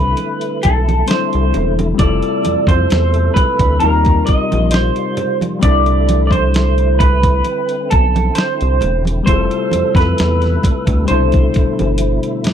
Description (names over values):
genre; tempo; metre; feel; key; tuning
R&B, neo-soul; 66 BPM; 4/4; swing 53% on 16ths; C major; A4 = 441 Hz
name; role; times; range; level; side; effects
electric guitar through a small old amp; melody; 0.0-12.4 s; A4 to Eb5; -18 LUFS; right 2 dB; lush chorus
overdriven reed electric piano; accompaniment; 0.0-12.5 s; B2 to Bb4; -21 LUFS; left 11 dB; none
percussive tonewheel organ; sustained chords; 0.0-12.5 s; B2 to A4; -25 LUFS; right 2 dB; slow rotary speaker, overdrive, chorus vibrato
rubbery square bass; bass; 0.0-12.2 s; E1 to F2; -16 LUFS; equal; tube saturation
dusty soul sampler-style drum kit; drums; 0.2-12.5 s; hi-hat, kick drum, snare drum; -16 LUFS; equal; none
congas; percussion; 0.2-12.5 s; none; -24 LUFS; right 4 dB; none
room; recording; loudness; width
little or no reverb; dry, close 1970s-style studio recording; -12 LUFS; side -9 dB against mid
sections
0.0-12.5 A section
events
drum fill 12.0-12.5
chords
0.0 C69; 2.0 Fmaj7; 3.8 Eb69; 5.6 C69; 9.3 Fmaj7; 11.1 Cmaj13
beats
0.18 1.08 | 1.99 2.90 3.81 4.72 | 5.63 6.54 7.45 8.36 | 9.27 10.18 11.09 11.99